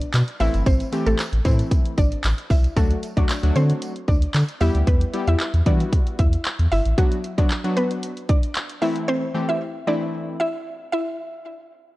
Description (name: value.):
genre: dance-pop.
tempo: 114 BPM.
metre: 4/4.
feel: straight.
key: A dorian.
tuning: A4 = 440 Hz.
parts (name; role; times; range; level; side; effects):
saturated sub bass; bass; 0.0-6.9 s; G1 to E3; -20 LUFS; equal; sidechain pumping.
pop drum kit; drums; 0.0-9.1 s; handclaps, hi-hat, kick drum; -21 LUFS; equal; none.
tambourine; percussion; 0.1-4.7 s; none; -43 LUFS; right 4 dB; none.
mallet-like synth pluck; melody; 0.4-11.0 s; F#3 to E5; -26 LUFS; equal; chorus, sidechain pumping, tape echo.
glassy digital keys; accompaniment; 0.4-10.4 s; E3 to G4; -27 LUFS; left 1 dB; chorus, sidechain pumping.
room: little or no reverb.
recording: worn, warbling old tape, cassette tape, warbly pitch drift.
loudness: -19 LUFS.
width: side -18 dB against mid.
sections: 0.0-11.2 A section.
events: drop 0.0-11.2.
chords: 0.4 Am; 2.8 D; 4.6 Em; 7.0 Bm; 8.8 Am.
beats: 0.14 | 0.66 1.19 1.71 2.24 | 2.77 3.29 3.82 4.34 | 4.87 5.40 5.92 6.45 | 6.98 7.50 8.03 8.56 | 9.08 9.61 10.13 10.66.